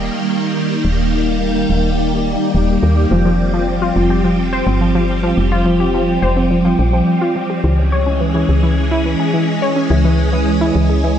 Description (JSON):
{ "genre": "IDM", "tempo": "106 BPM", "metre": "4/4", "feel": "straight", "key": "unclear", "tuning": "A4 = 440 Hz", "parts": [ { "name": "soft string machine", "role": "sustained chords", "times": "0.0-11.2 s", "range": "Eb3 to Ab4", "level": "-17 LUFS", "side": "right 1 dB", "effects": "phaser, ensemble chorus" }, { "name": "woody FM bass", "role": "bass", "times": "0.0-11.2 s", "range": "Eb1 to Eb2", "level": "-17 LUFS", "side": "equal", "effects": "none" }, { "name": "warbly dusty pluck", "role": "arpeggios", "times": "3.1-11.2 s", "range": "Fb3 to Db5", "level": "-17 LUFS", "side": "left 1 dB", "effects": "chorus, tape echo" } ], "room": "moderate echo chamber reverb, RT60 1.6 s", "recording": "dark, warm production", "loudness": "-13 LUFS", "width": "side -9 dB against mid", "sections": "0.0-11.2 A section", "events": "none", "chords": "0.0 Eb; 3.1 Fsus2; 7.6 Dbm" }